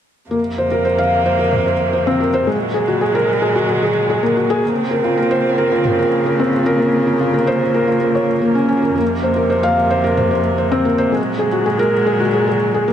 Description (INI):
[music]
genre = piano and strings electronica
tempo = 111 BPM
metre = 4/4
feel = straight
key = Bb minor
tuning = A4 = 440 Hz
[part]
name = dark string quartet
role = sustained chords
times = 0.3-12.9 s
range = F2 to C4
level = -19 LUFS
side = right 1 dB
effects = stereo widening
[part]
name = felt-muted upright piano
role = riff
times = 0.3-12.9 s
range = Ab3 to F5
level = -16 LUFS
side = equal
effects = digital delay
[part]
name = electronic toms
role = drums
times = 1.5-1.6, 5.8-6.0, 10.2-10.3 s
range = none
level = -25 LUFS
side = equal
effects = overdrive, low-pass filter on toms, low-pass filter on room
[sound]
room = moderate huge ambient reverb, RT60 4.8 s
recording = none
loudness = -14 LUFS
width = side -9 dB against mid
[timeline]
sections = 0.3-12.9 A section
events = none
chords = 0.3 Fsus4; 2.5 Gbadd9; 4.6 Bbmadd9; 9.0 Fsus4; 11.1 Gbadd9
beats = | 0.31 0.85 1.39 1.93 | 2.47 3.01 3.55 4.09 | 4.63 5.17 5.71 6.25 | 6.79 7.33 7.88 8.42 | 8.96 9.50 10.04 10.58 | 11.12 11.66 12.20 12.74